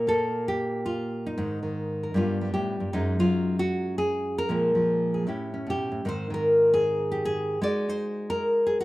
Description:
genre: solo jazz.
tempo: 154 BPM.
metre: 4/4.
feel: swing 66% on 8ths.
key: unclear.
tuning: A4 = 440 Hz.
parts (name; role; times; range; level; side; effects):
nylon-string guitar; solo; 0.0-8.8 s; Gb2 to D5; -24 LUFS; equal; none.
room: light reverb.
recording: close, detailed microphones.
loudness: -24 LUFS.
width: side -18 dB against mid.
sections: 0.0-8.8 A section.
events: none.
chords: 0.0 N.C.; 1.4 Absus2; 2.1 G9; 2.9 Gbsus2; 4.5 Bbsus2; 5.3 A9; 6.0 Abmaj7; 7.6 Ab9.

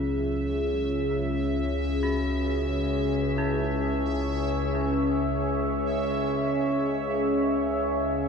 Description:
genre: dark ambient drone.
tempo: free time.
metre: none.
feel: none.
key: C# minor.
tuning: A4 = 441 Hz.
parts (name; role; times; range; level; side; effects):
deep dark ambient pad; sustained chords; 0.0-8.3 s; C#4 to E5; -29 LUFS; equal; chorus, built-in reverb.
gamelan-type bronze metallophone; arpeggios; 0.0-8.3 s; F#3 to F#4; -39 LUFS; right 1 dB; ping-pong delay.
overtone-sweeping drone; drone; 0.0-8.3 s; C#2 to C#3; -26 LUFS; equal; chorus, built-in reverb.
bubbling stepped-filter texture; texture; 0.0-8.3 s; E5; -37 LUFS; left 1 dB; chorus, built-in reverb.
room: wet cathedral reverb, RT60 5.1 s.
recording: none.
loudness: -24 LUFS.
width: side -6 dB against mid.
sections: 0.0-8.3 A section.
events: fade-in on ambient pad 0.0-8.3; fade-in on synth texture 0.0-8.3; fade-out on bronze metallophone 0.0-8.3; filter sweep on synth drone 0.0-8.3.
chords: 0.0 C#m.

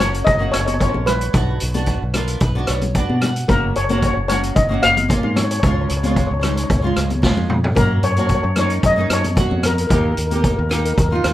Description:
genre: calypso.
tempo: 112 BPM.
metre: 4/4.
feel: straight.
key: F# major.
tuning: A4 = 442 Hz.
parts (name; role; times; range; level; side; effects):
steel pan; melody; 0.0-11.2 s; A#4 to E#5; -21 LUFS; left 2 dB; tape echo.
flamenco guitar; accompaniment; 0.0-11.3 s; G#3 to F#5; -24 LUFS; right 1 dB; double-tracked left and right.
modern bright fingered electric bass; bass; 0.0-11.3 s; F#1 to B2; -21 LUFS; equal; none.
street-band drum kit; drums; 0.0-11.3 s; hi-hat, kick drum, rim click, snare drum, toms; -20 LUFS; equal; none.
congas; percussion; 0.0-10.4 s; none; -26 LUFS; left 3 dB; none.
room: moderate small room reverb, RT60 0.6 s.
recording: rough home demo mix.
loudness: -15 LUFS.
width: side -14 dB against mid.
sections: 0.0-11.3 A section.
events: nylon-string guitar fill 1.9-3.5; drum fill 7.2-7.8.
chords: 0.0 F#maj7; 1.3 Bm; 3.5 F#maj7; 5.6 C#; 7.8 F#maj7; 9.9 D#.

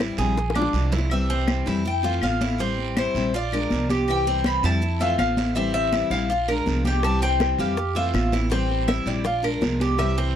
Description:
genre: latin, Cuban son and guajira.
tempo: 162 BPM.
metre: 4/4.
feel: straight.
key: unclear.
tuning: A4 = 440 Hz.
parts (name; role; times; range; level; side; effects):
picked steel-string acoustic guitar; accompaniment; 0.0-10.4 s; C3 to F4; -28 LUFS; left 4 dB; none.
Cuban tres; arpeggios; 0.0-10.4 s; C4 to Bb4; -28 LUFS; right 4 dB; none.
upright bass; bass; 0.0-10.4 s; A1 to F2; -26 LUFS; right 1 dB; none.
bongos; percussion; 0.0-1.1, 7.0-10.4 s; none; -30 LUFS; left 5 dB; none.
congas; percussion; 0.0-10.4 s; none; -27 LUFS; equal; none.
guiro; percussion; 0.2-10.4 s; none; -38 LUFS; right 14 dB; none.
claves; percussion; 0.5-10.2 s; none; -34 LUFS; left 16 dB; none.
Cuban tres; melody; 1.1-10.4 s; C5 to B5; -27 LUFS; left 4 dB; none.
room: light reverb.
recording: dry, close 1970s-style studio recording.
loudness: -20 LUFS.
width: side -9 dB against mid.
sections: 0.0-1.1 A section; 1.1-10.4 B section.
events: drum fill 0.4-1.1.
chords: 0.4 Bb7; 1.1 C; 1.9 Fmaj7; 2.6 Am7; 3.3 Bb7; 4.1 C; 4.8 Fmaj7; 5.6 Am7; 6.3 Bb7; 7.0 C; 7.8 Fmaj7; 8.5 Am7; 9.3 Bb7.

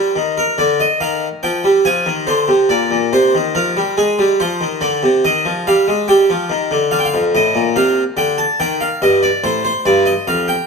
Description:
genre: classical, baroque-style two-part invention for harpsichord.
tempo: 71 BPM.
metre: 4/4.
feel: straight.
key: Eb major.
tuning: A4 = 440 Hz.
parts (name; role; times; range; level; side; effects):
harpsichord; solo; 0.0-10.7 s; F2 to A5; -13 LUFS; equal; none.
room: moderate recital hall reverb, RT60 1.6 s.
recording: close, detailed microphones.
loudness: -13 LUFS.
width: side -4 dB against mid.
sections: 0.2-10.7 A section.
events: none.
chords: 0.2 Eb; 1.9 Fm; 3.5 Bb7/F; 5.2 Eb; 6.9 Bb; 8.6 Cm.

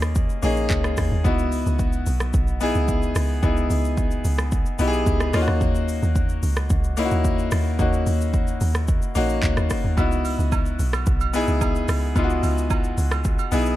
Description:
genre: amapiano.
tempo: 110 BPM.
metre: 4/4.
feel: straight.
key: C# dorian.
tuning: A4 = 440 Hz.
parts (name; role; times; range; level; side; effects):
clear concert grand piano; accompaniment; 0.0-13.8 s; A#3 to G#4; -24 LUFS; left 2 dB; none.
deep log drum bass; bass; 0.0-13.8 s; A#1 to D#2; -23 LUFS; equal; none.
afro-pop drum kit; drums; 0.0-13.8 s; handclaps, hi-hat, kick drum, rim click, shaker; -24 LUFS; equal; none.
agogo bells and woodblock; percussion; 10.0-13.5 s; none; -33 LUFS; right 12 dB; none.
room: little or no reverb.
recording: dark, warm production.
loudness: -19 LUFS.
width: side -14 dB against mid.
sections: 0.0-13.8 A section.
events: none.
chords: 0.0 D#m7; 1.2 C#m11; 5.3 D#m7; 10.0 C#m11.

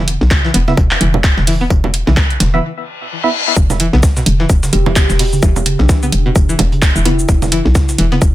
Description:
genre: minimal techno.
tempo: 129 BPM.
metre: 4/4.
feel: swing 58% on 16ths.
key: unclear.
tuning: A4 = 439 Hz.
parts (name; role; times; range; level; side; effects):
string-like resonator pluck; riff; 0.0-8.1 s; B2 to B3; -20 LUFS; left 1 dB; chorus, sidechain pumping, ping-pong delay.
hollow knocking FM bass; bass; 0.0-8.3 s; E1 to B1; -15 LUFS; equal; tube saturation, sidechain pumping.
booming analog drum machine; drums; 0.1-8.3 s; cabasa, handclaps, hi-hat; -19 LUFS; right 1 dB; none.
breakbeat sampler-style drum kit; drums; 0.1-8.3 s; hi-hat, snare drum, tambourine; -28 LUFS; equal; high-pass filter on perc, high-pass filter on snare, high-pass filter on hats.
electronic kick drum; drums; 0.3-8.3 s; none; -12 LUFS; equal; overdrive.
congas; percussion; 0.3-8.2 s; none; -21 LUFS; right 4 dB; overdrive.
percussive organ stab; stabs; 0.7-3.3 s; B3 to E5; -18 LUFS; right 2 dB; lush chorus, ping-pong delay.
reverse cymbal; sound effects; 2.9-3.6 s; none; -18 LUFS; left 6 dB; none.
kalimba; melody; 4.7-7.4 s; D4 to G4; -22 LUFS; equal; ping-pong delay.
room: light reverb.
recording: dense, heavily limited modern master.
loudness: -10 LUFS.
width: side -15 dB against mid.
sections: 0.0-3.6 A section; 3.6-8.3 B section.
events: break 2.6-3.6; reverse cymbal 2.9-3.6; drop 3.6-8.3.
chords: 0.0 E5.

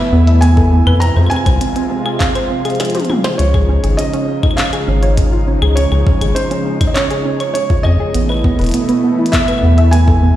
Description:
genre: IDM.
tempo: 101 BPM.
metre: 4/4.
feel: straight.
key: unclear.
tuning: A4 = 440 Hz.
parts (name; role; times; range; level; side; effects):
felt-muted upright piano; melody; 0.0-10.4 s; C5 to Bb5; -21 LUFS; right 1 dB; ping-pong delay, shimmer reverb.
warm analog pad; sustained chords; 0.0-10.4 s; B2 to F4; -21 LUFS; equal; chorus, shimmer reverb.
soft round pluck; arpeggios; 0.0-10.3 s; B3 to E5; -18 LUFS; right 2 dB; chorus, cassette tape, ping-pong delay, shimmer reverb.
round analog bass; bass; 0.1-10.3 s; E1 to F2; -12 LUFS; equal; none.
glitchy drum kit; drums; 0.3-10.0 s; claves, handclaps, hi-hat, snare drum, toms; -22 LUFS; left 2 dB; small room ambience, digital delay.
electronic kick drum; drums; 0.6-10.2 s; none; -15 LUFS; equal; small room ambience.
room: light reverb.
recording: played on a big sound system in a bare room, stone room reverb.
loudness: -11 LUFS.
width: side -13 dB against mid.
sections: 0.0-10.4 A section.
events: drum fill 2.8-3.4.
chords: 0.0 Asus2; 1.0 Fm; 3.4 Dbadd9; 8.1 Asus2.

